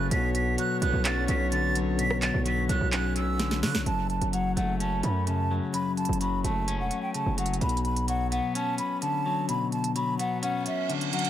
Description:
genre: hip hop, trap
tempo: 128 BPM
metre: 4/4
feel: half-time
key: F# minor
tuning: A4 = 437 Hz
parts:
  - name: breathy hollow jazz flute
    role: melody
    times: 0.0-11.3 s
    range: E5 to B6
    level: -30 LUFS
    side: right 1 dB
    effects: dub echo
  - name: clean electric guitar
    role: accompaniment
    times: 0.0-11.3 s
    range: F#2 to C#4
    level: -30 LUFS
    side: left 5 dB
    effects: dub echo
  - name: bright brass ensemble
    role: sustained chords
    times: 0.0-3.8 s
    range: D3 to C#5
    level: -35 LUFS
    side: equal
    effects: none
  - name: distorted 808-style bass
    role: bass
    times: 0.0-8.4 s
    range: E1 to D3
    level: -29 LUFS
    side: right 1 dB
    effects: distortion
  - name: trap drum kit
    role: drums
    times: 0.1-11.3 s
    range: handclaps, hi-hat, rim click, snare drum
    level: -32 LUFS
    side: right 2 dB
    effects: overdrive, dub echo
  - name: reverse cymbal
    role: sound effects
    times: 10.6-11.3 s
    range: none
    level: -33 LUFS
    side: right 10 dB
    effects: none
room: digital ambience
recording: echo-heavy mix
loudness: -25 LUFS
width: side -11 dB against mid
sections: 0.0-3.9 A section; 3.9-11.3 B section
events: drum fill 3.4-3.9; kick muted 9.5-11.3; reverse cymbal 10.6-11.3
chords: 0.1 Bmadd9; 3.9 F#m; 7.6 Bmadd9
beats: | 0.11 0.58 1.05 1.52 | 1.99 2.46 2.93 3.40 | 3.86 4.33 4.80 5.27 | 5.74 6.21 6.68 7.14 | 7.61 8.08 8.55 9.02 | 9.49 9.96 10.43 10.89

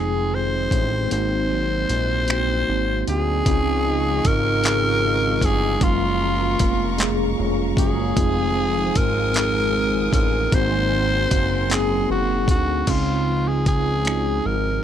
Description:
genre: slow six-eight R&B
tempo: 51 BPM (dotted quarters)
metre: 6/8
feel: straight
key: Db major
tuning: A4 = 441 Hz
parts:
  - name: growling tenor saxophone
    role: melody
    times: 0.0-14.8 s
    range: F4 to C5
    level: -23 LUFS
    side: equal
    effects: none
  - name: electric guitar at the edge of break-up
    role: second line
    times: 0.0-14.8 s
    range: F2 to Eb4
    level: -30 LUFS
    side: right 6 dB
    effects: lush chorus
  - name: mellow tine electric piano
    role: accompaniment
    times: 0.0-14.8 s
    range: Ab3 to Ab4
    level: -25 LUFS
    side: left 1 dB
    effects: medium stereo tremolo
  - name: fat analog bass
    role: bass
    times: 0.0-14.8 s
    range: F1 to D2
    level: -24 LUFS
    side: equal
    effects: none
  - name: dusty soul sampler-style drum kit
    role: drums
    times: 0.7-14.2 s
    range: crash cymbal, finger snaps, handclaps, hi-hat, kick drum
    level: -21 LUFS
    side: equal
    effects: none
  - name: warm studio string section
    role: sustained chords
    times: 3.5-12.9 s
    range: C4 to Eb6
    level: -34 LUFS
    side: equal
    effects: none
room: light reverb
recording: none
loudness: -18 LUFS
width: side -9 dB against mid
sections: 0.0-3.5 A section; 3.5-12.9 B section; 12.9-14.8 C section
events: kick muted 1.1-3.5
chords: 0.0 Fm7; 1.1 Ab9; 3.5 Dbmaj9; 5.8 Gbmaj7; 8.2 Fm7; 10.5 Ab9; 12.9 Dbmaj9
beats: | 1.11 2.29 | 3.46 4.64 | 5.82 6.99 | 8.17 9.35 | 10.52 11.70 | 12.88 14.05

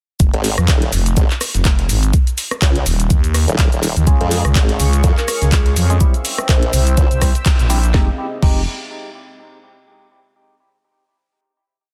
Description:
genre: bass house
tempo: 124 BPM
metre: 4/4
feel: swing 56% on 16ths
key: F minor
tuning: A4 = 440 Hz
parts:
  - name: growling FM bass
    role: bass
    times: 0.2-8.7 s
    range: Eb1 to F2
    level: -18 LUFS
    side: equal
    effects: overdrive, sidechain pumping
  - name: electronic kick drum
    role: drums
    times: 0.2-8.5 s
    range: none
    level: -16 LUFS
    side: equal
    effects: overdrive
  - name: electronic shaker and snare drum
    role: drums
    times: 0.2-7.8 s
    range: none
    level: -34 LUFS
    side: equal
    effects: none
  - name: garage drum kit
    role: drums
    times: 0.2-8.5 s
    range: cabasa, crash cymbal, handclaps, hi-hat, rim click, snare drum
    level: -24 LUFS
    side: equal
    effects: none
  - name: formant-sweep wobble bass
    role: bass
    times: 0.3-7.1 s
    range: Eb1 to F2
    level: -22 LUFS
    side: equal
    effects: chorus, tube saturation, sidechain pumping
  - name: sweeping resonant pad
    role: sustained chords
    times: 4.1-8.2 s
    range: C4 to E6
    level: -31 LUFS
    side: equal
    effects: chorus, sidechain pumping
  - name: percussive organ stab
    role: stabs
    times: 4.1-8.6 s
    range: G3 to C5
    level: -29 LUFS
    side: equal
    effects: chorus, sidechain pumping, digital delay
  - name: vibraphone with medium mallets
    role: melody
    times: 5.2-7.2 s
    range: Ab4 to C5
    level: -29 LUFS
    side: equal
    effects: digital delay
room: digital ambience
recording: dense, heavily limited modern master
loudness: -15 LUFS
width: mono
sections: 0.2-7.9 drop; 7.9-9.9 final chord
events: drop 0.2-7.9; band accent 7.5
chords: 0.2 Fm; 2.1 N.C.; 4.1 Db; 6.0 C; 7.9 Fm7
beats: | 0.20 0.68 1.17 1.65 | 2.13 2.62 3.10 3.59 | 4.07 4.55 5.04 5.52 | 6.01 6.49 6.97 7.46 | 7.94 8.43

